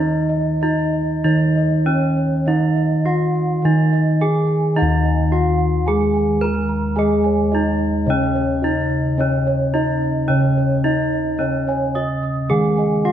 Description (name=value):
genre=Javanese gamelan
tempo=107 BPM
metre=4/4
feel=uneven beats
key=Eb slendro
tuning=A4 = 443 Hz
part: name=gamelan-type bronze metallophone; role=melody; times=0.0-13.1 s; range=Db4-40c to Eb5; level=-21 LUFS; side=right 1 dB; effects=slapback echo
part: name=gamelan-type bronze metallophone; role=accompaniment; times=0.0-13.1 s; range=Db3-40c to Ab3-20c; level=-21 LUFS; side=right 1 dB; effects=none
part: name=gamelan-type bossed gongs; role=arpeggios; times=0.0-13.1 s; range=Db5-40c to Bb5+20c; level=-27 LUFS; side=left 7 dB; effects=none
part: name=gamelan-type bronze metallophone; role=arpeggios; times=0.0-13.1 s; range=Db5-40c to Eb6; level=-27 LUFS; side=right 5 dB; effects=none
part: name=gamelan-type bossed gongs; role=bass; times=0.0-13.1 s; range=Eb2 to Ab4-20c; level=-22 LUFS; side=left 1 dB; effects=none
room=moderate scoring stage reverb, RT60 1.6 s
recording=none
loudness=-16 LUFS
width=side -10 dB against mid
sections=0.0-4.8 A section; 4.8-13.1 B section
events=none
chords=none